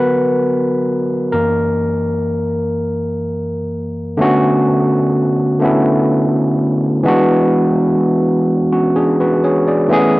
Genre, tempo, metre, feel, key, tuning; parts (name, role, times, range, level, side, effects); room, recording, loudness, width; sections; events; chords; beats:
R&B; 42 BPM (dotted quarters); 6/8; straight; B dorian; A4 = 440 Hz
overdriven tine electric piano; solo; 0.0-10.2 s; F#2 to D5; -13 LUFS; equal
light reverb; rough home demo mix; -13 LUFS; side -19 dB against mid
0.0-4.2 A section; 4.2-10.2 B section
tine electric piano solo 0.0-4.2
0.0 D6; 1.3 F#7; 4.2 Bm7; 7.0 E7
| 1.32 2.75 | 4.18 5.61 | 7.04 8.47 | 9.90